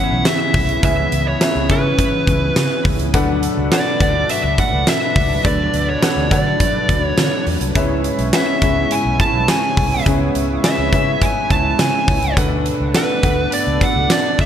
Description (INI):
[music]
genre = 1980s-style pop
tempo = 104 BPM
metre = 4/4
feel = straight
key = unclear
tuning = A4 = 439 Hz
[part]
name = fuzz lead guitar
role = melody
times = 0.0-14.5 s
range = B4 to A5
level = -20 LUFS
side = equal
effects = distortion, digital delay
[part]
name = warm baby grand piano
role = accompaniment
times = 0.0-14.5 s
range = C#3 to F#5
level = -23 LUFS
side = left 3 dB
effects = lush chorus
[part]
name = chorused pulse-width pad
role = sustained chords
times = 0.0-14.5 s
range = B2 to E4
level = -27 LUFS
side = right 2 dB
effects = none
[part]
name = mellow synth brass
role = stabs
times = 0.0-14.5 s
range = E3 to D5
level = -26 LUFS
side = right 1 dB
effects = chorus, digital delay
[part]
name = vintage muted fingered electric bass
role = bass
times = 0.1-14.5 s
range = B1 to D3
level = -21 LUFS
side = equal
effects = none
[part]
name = huge arena drum kit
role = drums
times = 0.3-14.5 s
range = hi-hat, kick drum, snare drum, tambourine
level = -18 LUFS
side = right 1 dB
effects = none
[sound]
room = moderate lush hall reverb, RT60 2.1 s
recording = bright 1980s-style digital production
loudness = -14 LUFS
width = side -9 dB against mid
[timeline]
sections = 0.0-14.5 A section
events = none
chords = 0.0 C#m7; 3.1 Bm7; 7.8 C#m7; 12.4 Bm7